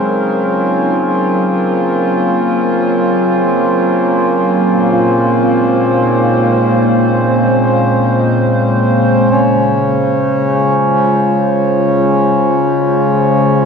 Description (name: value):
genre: ambient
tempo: free time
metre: none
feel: none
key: unclear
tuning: A4 = 440 Hz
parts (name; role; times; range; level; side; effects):
- warbly tape-like pad; sustained chords; 0.0-13.7 s; Bb2 to C5; -13 LUFS; right 1 dB; chorus, built-in reverb, shimmer reverb
- tine electric piano; arpeggios; 0.0-0.9, 4.9-10.1 s; Ab3 to Eb5; -23 LUFS; left 2 dB; none
- hand-pumped harmonium; drone; 0.0-13.7 s; Db3 to Db4; -14 LUFS; left 1 dB; none
room: wet concert hall reverb, RT60 2.4 s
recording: worn, warbling old tape, cassette tape, warbly pitch drift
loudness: -10 LUFS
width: side -6 dB against mid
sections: 0.0-9.3 A section; 9.3-13.7 B section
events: none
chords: 0.0 Gb69; 4.6 Bbm9; 9.3 Bbm9/Db